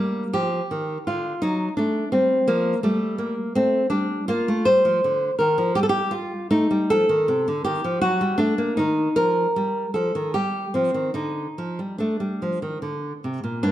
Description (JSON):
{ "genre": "classical, baroque-style dance for nylon-string guitar", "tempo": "71-86 BPM", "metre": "3/4", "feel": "rubato", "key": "unclear", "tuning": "A4 = 440 Hz", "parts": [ { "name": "nylon-string guitar", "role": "solo", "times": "0.0-13.7 s", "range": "G2 to C5", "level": "-20 LUFS", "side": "equal", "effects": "none" } ], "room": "moderate recital hall reverb, RT60 1.4 s", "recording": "dark, warm production", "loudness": "-20 LUFS", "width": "side -13 dB against mid", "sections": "0.0-13.7 A section", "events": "none", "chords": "0.0 G5; 1.4 D/F#; 2.1 F69 (rootless); 4.3 Bb; 5.8 N.C.; 6.5 A(b5, no3); 8.0 D/F#; 8.8 Eb; 11.2 Dsus4; 12.8 Bbadd9" }